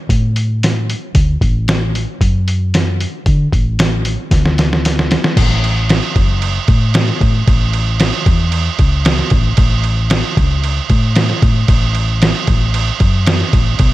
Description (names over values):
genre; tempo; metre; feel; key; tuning
indie rock; 114 BPM; 4/4; straight; unclear; A4 = 440 Hz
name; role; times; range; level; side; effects
hollow-body short-scale fingered electric bass; bass; 0.1-13.9 s; F#1 to D3; -15 LUFS; equal; none
lo-fi sampler-style drum kit; drums; 0.1-13.9 s; crash cymbal, hi-hat, kick drum, snare drum; -14 LUFS; equal; none
room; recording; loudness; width
light reverb; none; -12 LUFS; side -16 dB against mid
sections
0.0-5.4 A section; 5.4-13.9 B section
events
drum fill 4.3-5.4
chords
none